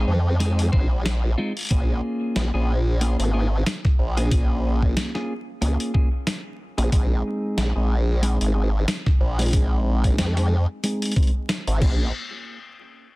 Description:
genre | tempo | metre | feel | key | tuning
glitch hop | 92 BPM | 4/4 | swing 56% on 16ths | Bb minor | A4 = 439 Hz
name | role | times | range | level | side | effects
clean electric guitar | stabs | 0.0-12.1 s | Ab3 to C5 | -28 LUFS | equal | sidechain pumping, low-pass filter, dub echo
formant-sweep wobble bass | bass | 0.0-12.1 s | Ab1 to F2 | -21 LUFS | equal | chorus, tube saturation
boom bap sampler-style drum kit | drums | 0.4-12.0 s | crash cymbal, hi-hat, snare drum | -28 LUFS | equal | none
electronic kick drum | drums | 0.7-12.0 s | none | -20 LUFS | equal | none
room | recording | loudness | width
little or no reverb | dense, heavily limited modern master, vinyl crackle | -20 LUFS | side -22 dB against mid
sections
0.0-12.1 A section; 12.1-13.2 B section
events
filter sweep on clean electric guitar 0.0-12.1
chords
0.0 Ab; 1.7 Bbm7; 6.9 Ab; 11.8 Bbm7; 12.1 N.C.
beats
0.40 1.05 | 1.71 2.36 3.01 3.66 | 4.32 4.97 5.62 6.27 | 6.92 7.58 8.23 8.88 | 9.53 10.18 10.84 11.49

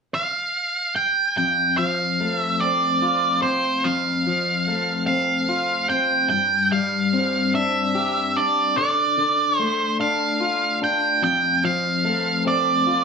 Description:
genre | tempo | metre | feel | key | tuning
rock | 49 BPM (dotted quarters) | 6/8 | straight | F major | A4 = 442 Hz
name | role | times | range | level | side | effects
octave-fuzz lead guitar | melody | 0.1-13.0 s | C5 to G5 | -20 LUFS | right 2 dB | distortion
electric guitar through a small old amp | arpeggios | 1.4-13.0 s | F2 to G4 | -24 LUFS | left 3 dB | harmonic tremolo
room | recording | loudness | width
wet large studio reverb, RT60 0.9 s | band playing live in one room | -19 LUFS | side -5 dB against mid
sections
0.0-1.4 A section; 1.4-13.0 B section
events
none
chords
0.0 N.C.; 1.4 F; 6.3 Gsus4; 8.8 Dm; 11.2 F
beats
0.14 | 1.38 2.61 | 3.84 5.07 | 6.31 7.54 | 8.77 10.00 | 11.23 12.46

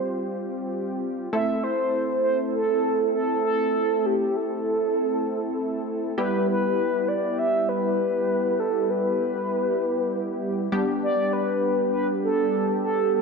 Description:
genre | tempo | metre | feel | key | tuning
pop | 99 BPM | 4/4 | straight | unclear | A4 = 440 Hz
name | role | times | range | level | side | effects
mellow horn-like synth lead | melody | 0.0-13.2 s | G4 to E5 | -24 LUFS | right 1 dB | chorus, diffuse ambient delay
funky polysynth comp | accompaniment | 0.0-13.2 s | G3 to A4 | -26 LUFS | equal | chorus
room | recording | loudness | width
wet plate reverb, RT60 2.6 s | dreamy mix soaked in reverb | -22 LUFS | side -4 dB against mid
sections
0.0-1.3 A section; 1.3-13.2 B section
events
none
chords
0.0 Fsus2; 1.3 Am; 6.2 Em; 10.7 G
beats
0.12 0.72 | 1.33 1.94 2.54 3.15 | 3.75 4.36 4.97 5.57 | 6.18 6.78 7.39 8.00 | 8.60 9.21 9.81 10.42 | 11.03 11.63 12.24 12.85

